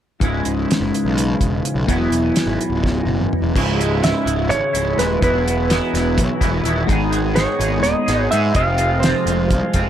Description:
psychedelic rock; 252 BPM (eighths); 7/8; straight; C# minor; A4 = 440 Hz
twangy electric guitar; riff; 0.2-9.9 s; C#2 to G#4; -20 LUFS; equal; rotary speaker, double-tracked left and right
fuzz picked electric bass; bass; 0.2-9.9 s; C#1 to G#2; -21 LUFS; equal; overdrive
cloth-damped thuddy drum kit; drums; 0.2-9.9 s; crash cymbal, hi-hat, kick drum, snare drum, toms; -21 LUFS; equal
clean lap steel guitar; melody; 4.0-9.9 s; B4 to F5; -21 LUFS; right 2 dB; tape echo
light reverb, small room ambience; -16 LUFS; side -10 dB against mid
0.2-3.5 A section; 3.5-9.9 B section
drum fill 2.8-3.5
0.2 C#m; 5.2 Esus2; 6.9 G#m; 8.5 Fm

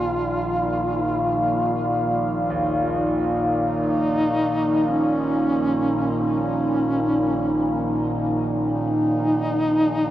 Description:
dark ambient drone; 47 BPM; 4/4; straight; A4 = 440 Hz
mellow duduk; melody; 0.0-10.1 s; Db4 to F4; -25 LUFS; equal; diffuse ambient delay
dark analog pad; sustained chords; 0.0-10.1 s; Eb4 to F5; -23 LUFS; equal; chorus
warm grand piano; arpeggios; 0.0-10.1 s; Eb2 to C5; -38 LUFS; right 1 dB
overtone-sweeping drone; drone; 0.0-10.1 s; Bb1 to Bb2; -25 LUFS; equal; chorus, built-in reverb
wet cathedral reverb, RT60 6.7 s; worn, warbling old tape, cassette tape, warbly pitch drift; -19 LUFS; side -13 dB against mid
0.0-10.1 A section
0.0 Ebsus2

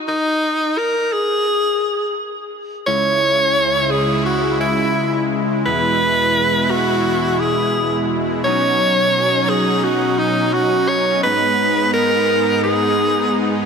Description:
synthwave; 86 BPM; 4/4; straight; C# dorian; A4 = 440 Hz
clear tenor saxophone; melody; 0.1-13.6 s; D#4 to C#5; -17 LUFS; equal; tape echo
soft supersaw; sustained chords; 2.9-13.7 s; C#2 to E4; -19 LUFS; equal
moderate lush hall reverb, RT60 2.8 s; dense, heavily limited modern master; -15 LUFS; side -6 dB against mid
0.0-2.9 A section; 2.9-13.7 B section
0.0 N.C.; 2.9 C#m; 5.7 E; 8.4 Badd9; 11.2 G#m

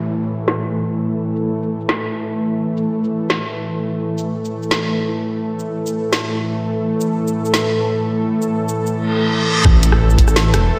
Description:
half-time drum and bass; 170 BPM; 4/4; half-time; A4 = 441 Hz
bowed-like drone; sustained chords; 0.0-10.8 s; A2 to A4; -21 LUFS; equal; built-in reverb, sidechain pumping
downlifter, reverse cymbal and impact; sound effects; 0.0-1.2, 9.1-10.8 s; -23 LUFS; equal
drum and bass drum kit; drums; 0.2-10.6 s; hi-hat, rim click, shaker, snare drum; -23 LUFS; equal; low-pass filter on hats, low-pass filter on snare, low-pass filter on perc, low-pass filter on room
dark detuned saw bass; bass; 9.7-10.7 s; E1 to A1; -17 LUFS; equal
electronic kick drum; drums; 9.7-10.3 s; -15 LUFS; equal
wet lush hall reverb, RT60 1.8 s; dreamy mix soaked in reverb; -18 LUFS; mono
0.0-9.7 A section; 9.7-10.8 B section
filter sweep on drum 0.0-9.7; filter sweep on synth drone 0.0-9.7; reverse cymbal 9.1-9.7; drop 9.7-10.8; impact 9.7-10.8
0.0 A5

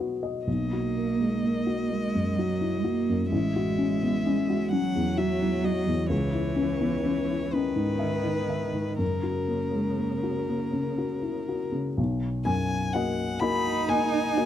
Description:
neoclassical piano and strings; 39-44 BPM (dotted quarters); 6/8; rubato; B major; A4 = 440 Hz
dark upright piano; accompaniment; 0.0-14.5 s; A1 to B5; -26 LUFS; left 2 dB
clear violin; melody; 0.5-14.5 s; A#4 to B5; -34 LUFS; left 4 dB
rich cello; second line; 0.5-14.5 s; C#3 to D#4; -30 LUFS; right 6 dB
small room ambience; dry, close 1970s-style studio recording; -24 LUFS; side -10 dB against mid
0.5-12.0 A section; 12.0-14.5 B section
0.5 Bmaj7; 3.3 F#m7/A; 6.1 C#madd9; 9.0 F#; 12.0 Bmaj7

